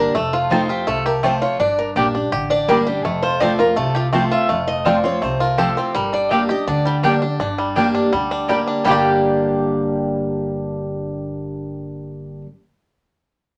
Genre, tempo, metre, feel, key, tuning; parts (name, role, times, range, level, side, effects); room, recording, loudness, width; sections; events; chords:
bluegrass; 165 BPM; 4/4; straight; G minor; A4 = 440 Hz
bluegrass banjo; melody; 0.0-12.5 s; F3 to G4; -25 LUFS; equal
picked old ladder-braced acoustic guitar; melody; 0.0-12.4 s; Eb4 to F5; -24 LUFS; equal
picked steel-string acoustic guitar; accompaniment; 0.0-12.5 s; F2 to G4; -24 LUFS; equal
upright bass; bass; 0.0-12.4 s; F1 to D2; -32 LUFS; equal
mandolin; stabs; 0.5-12.5 s; Bb3 to A5; -22 LUFS; equal
moderate studio ambience, RT60 0.5 s; -19 LUFS; mono
0.0-7.4 A section; 7.4-8.9 B section; 8.9-11.8 C section
0.1 F; 1.6 Gm; 3.0 F; 5.9 Gm